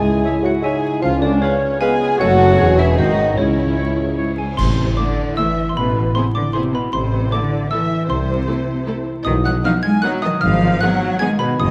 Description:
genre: cinematic, playful, whimsical film cue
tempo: 154 BPM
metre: 3/4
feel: straight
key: C# minor, A minor from 4.6 s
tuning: A4 = 439 Hz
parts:
  - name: xylophone with plastic mallets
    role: melody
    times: 0.0-11.7 s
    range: C#5 to Ab6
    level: -27 LUFS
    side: equal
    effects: none
  - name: dark chamber violin section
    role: second line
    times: 0.0-11.7 s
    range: G#4 to G#5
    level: -29 LUFS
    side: equal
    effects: none
  - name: hollow concert flute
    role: second line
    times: 0.0-4.2 s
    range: C#5 to G#5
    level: -28 LUFS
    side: equal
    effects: none
  - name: mellow bassoon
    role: accompaniment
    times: 0.0-4.2 s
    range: C#3 to G#3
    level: -22 LUFS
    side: equal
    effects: none
  - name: rich chamber viola section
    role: accompaniment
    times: 0.0-11.3 s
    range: A3 to G#4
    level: -29 LUFS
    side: equal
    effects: none
  - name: mellow French horn section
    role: sustained chords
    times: 0.0-4.4 s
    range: A3 to E4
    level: -25 LUFS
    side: equal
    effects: none
  - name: concert harp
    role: arpeggios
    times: 0.0-11.7 s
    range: E2 to C#6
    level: -29 LUFS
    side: equal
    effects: none
  - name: clear chamber double bass section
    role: bass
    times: 0.0-11.7 s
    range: E1 to C#2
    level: -25 LUFS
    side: equal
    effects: none
  - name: mellow tuba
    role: bass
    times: 0.0-11.7 s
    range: E1 to C#2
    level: -28 LUFS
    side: equal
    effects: none
  - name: warm chamber cello section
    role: bass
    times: 0.0-11.7 s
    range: C#2 to Ab3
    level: -25 LUFS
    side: equal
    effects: none
  - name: mellow clarinet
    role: second line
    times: 0.2-4.3 s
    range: E4 to C#5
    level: -31 LUFS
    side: equal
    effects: none
  - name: rich chamber violin section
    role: melody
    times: 0.3-11.3 s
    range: E4 to C#5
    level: -34 LUFS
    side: equal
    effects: none
  - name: clear oboe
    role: second line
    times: 0.3-4.3 s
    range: B#4 to E#5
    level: -33 LUFS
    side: equal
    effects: none
  - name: cymbal swell, clash cymbals and concert bass drum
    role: percussion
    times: 2.2-5.3 s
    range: none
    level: -28 LUFS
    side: equal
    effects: none
room: wet concert hall reverb, RT60 2.3 s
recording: dark, warm production, vinyl crackle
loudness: -17 LUFS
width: mono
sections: 0.0-4.6 A section; 4.6-11.7 B section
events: band accent 4.6-5.0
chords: 0.0 C#m; 1.0 C#7; 2.2 F#m; 2.6 C#m/E; 3.0 G#7; 3.4 C#m; 4.6 Am; 5.8 E/A; 6.9 Am; 8.1 Am/C; 9.3 B; 10.4 Abm

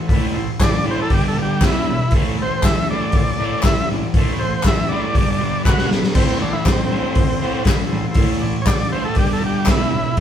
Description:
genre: garage rock duo or trio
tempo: 119 BPM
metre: 4/4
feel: straight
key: A minor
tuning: A4 = 440 Hz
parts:
  - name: fuzz guitar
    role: riff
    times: 0.0-10.2 s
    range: E2 to B3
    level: -21 LUFS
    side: right 1 dB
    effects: distortion
  - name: overdriven combo organ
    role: sustained chords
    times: 0.1-10.2 s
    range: B3 to E5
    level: -31 LUFS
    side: left 1 dB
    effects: none
  - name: raw garage drum kit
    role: drums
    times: 0.1-10.2 s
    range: crash cymbal, hi-hat, kick drum, snare drum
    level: -18 LUFS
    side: equal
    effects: none
  - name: overdriven combo organ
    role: melody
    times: 0.6-10.2 s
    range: C4 to F#5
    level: -23 LUFS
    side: equal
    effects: none
  - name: group handclap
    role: percussion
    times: 0.6-9.8 s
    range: none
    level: -27 LUFS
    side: left 3 dB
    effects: none
room: moderate large studio reverb, RT60 0.9 s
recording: band playing live in one room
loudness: -16 LUFS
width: side -9 dB against mid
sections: 0.0-10.2 A section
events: drum fill 5.7-6.2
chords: 0.0 Am; 1.1 G5; 1.6 E5; 2.1 Am; 5.1 G5; 5.7 B5; 6.2 Am; 9.2 G5; 9.7 E5

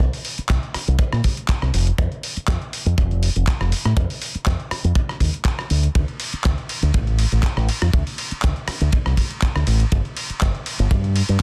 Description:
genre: nu-disco, nu disco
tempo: 121 BPM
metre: 4/4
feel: swing 53% on 16ths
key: unclear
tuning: A4 = 438 Hz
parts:
  - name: fingered electric bass with an envelope filter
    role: bass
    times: 0.0-11.4 s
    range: F1 to Bb2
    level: -21 LUFS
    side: equal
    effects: none
  - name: dusty soul sampler-style drum kit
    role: drums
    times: 0.0-11.4 s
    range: handclaps, hi-hat, ride cymbal, rim click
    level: -30 LUFS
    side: equal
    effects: soft clipping on snare
  - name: kick drum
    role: drums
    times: 0.0-11.4 s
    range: none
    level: -24 LUFS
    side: equal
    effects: none
room: small room ambience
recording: dense, heavily limited modern master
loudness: -21 LUFS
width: mono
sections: 0.0-11.4 A section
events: none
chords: none

